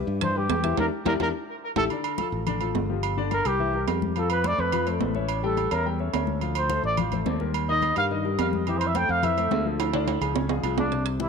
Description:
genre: Afro-Cuban jazz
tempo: 213 BPM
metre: 4/4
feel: straight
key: unclear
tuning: A4 = 441 Hz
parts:
  - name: warm grand piano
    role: accompaniment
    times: 0.0-11.3 s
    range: C3 to G5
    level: -29 LUFS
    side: left 12 dB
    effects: none
  - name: modern bright fingered electric bass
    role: bass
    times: 0.1-11.3 s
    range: G1 to G2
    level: -29 LUFS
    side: right 1 dB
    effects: none
  - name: congas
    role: percussion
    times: 0.1-11.3 s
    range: none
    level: -34 LUFS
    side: left 11 dB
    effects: none
  - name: breathy trumpet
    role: melody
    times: 0.2-11.3 s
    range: D4 to G5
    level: -28 LUFS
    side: right 1 dB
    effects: tape echo
  - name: timbales and agogo bells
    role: percussion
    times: 0.2-11.3 s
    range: none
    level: -30 LUFS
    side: right 16 dB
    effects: none
room: light reverb, small room reverb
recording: 1960s-style stereo with parts hard left and right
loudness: -23 LUFS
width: side -6 dB against mid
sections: 0.0-1.9 A section; 1.9-10.9 A section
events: trumpet solo 0.0-10.9; band accent 0.8-1.9; drum fill 1.2-1.9, 9.8-10.9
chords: 0.0 Cmaj7 (rootless); 0.8 Em7b5; 1.3 A5; 1.9 Dm; 3.0 Gm7; 3.6 C7; 4.2 F; 5.3 A7; 6.4 Dm7; 7.5 Ebadd9; 8.7 Fmaj7; 9.8 Dm; 10.4 Db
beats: 0.22 0.50 | 0.78 1.06 1.34 1.62 | 1.91 2.19 2.47 2.75 | 3.04 3.32 3.60 3.88 | 4.16 4.45 4.73 5.01 | 5.29 5.57 5.86 6.14 | 6.42 6.70 6.98 7.26 | 7.54 7.83 8.11 8.39 | 8.67 8.95 9.23 9.51 | 9.79 10.07 10.36 10.64 | 10.92 11.20

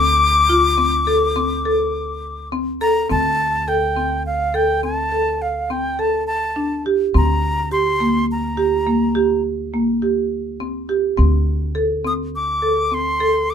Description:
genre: contemporary instrumental, chamber music in an uneven meter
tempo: 104 BPM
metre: 7/4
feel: straight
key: D minor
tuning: A4 = 440 Hz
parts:
  - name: breathy bright concert flute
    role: melody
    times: 0.0-13.5 s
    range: F5 to Eb6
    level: -19 LUFS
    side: left 1 dB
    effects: none
  - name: marimba with medium hard mallets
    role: arpeggios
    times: 0.0-13.5 s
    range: Bb3 to A4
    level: -20 LUFS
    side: right 1 dB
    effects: none
  - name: upright bass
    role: bass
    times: 0.0-13.5 s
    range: D2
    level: -24 LUFS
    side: equal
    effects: none
room: moderate studio reverb, RT60 0.6 s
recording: minimal, uncompressed stereo recording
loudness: -16 LUFS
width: side -8 dB against mid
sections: 0.0-3.1 A section; 3.1-13.5 B section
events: none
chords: 0.0 D7(no3); 3.1 D5; 7.1 Csus2/D; 11.2 D5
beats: 0.21 0.79 1.37 1.95 2.52 | 3.10 3.68 4.26 4.83 5.41 5.99 6.57 | 7.15 7.72 8.30 8.88 9.46 10.03 10.61 | 11.19 11.77 12.34 12.92 13.50

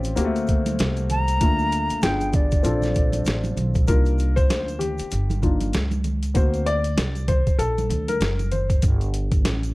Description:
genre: hip hop, jazz-hop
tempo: 97 BPM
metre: 4/4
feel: swing 59% on 16ths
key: C dorian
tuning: A4 = 440 Hz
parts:
  - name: dark baby grand piano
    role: accompaniment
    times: 0.0-8.8 s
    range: A3 to D5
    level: -25 LUFS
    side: left 3 dB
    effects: none
  - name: upright bass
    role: bass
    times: 0.0-9.7 s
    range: F#1 to D2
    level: -24 LUFS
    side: equal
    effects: none
  - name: boom bap sampler-style drum kit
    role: drums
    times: 0.0-9.7 s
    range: hi-hat, kick drum, snare drum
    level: -22 LUFS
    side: equal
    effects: none
  - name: tube shaker and congas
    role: percussion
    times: 0.0-9.7 s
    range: none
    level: -33 LUFS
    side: right 5 dB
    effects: none
  - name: mellow hollow silver concert flute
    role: melody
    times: 1.1-3.6 s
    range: D5 to Bb5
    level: -26 LUFS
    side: equal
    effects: none
room: small room ambience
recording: dark, warm production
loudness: -19 LUFS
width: side -20 dB against mid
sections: 0.0-3.9 A section; 3.9-9.7 B section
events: grand piano solo 3.9-9.7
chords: 0.2 D7b13; 1.4 Gm9/D (rootless); 2.0 G7b9; 2.6 Bbmaj7; 3.9 Cm11; 6.4 D7b13; 8.8 Gsus2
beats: 0.17 0.79 | 1.41 2.03 2.65 3.27 | 3.88 4.50 5.12 5.74 | 6.36 6.98 7.60 8.21 | 8.83 9.45

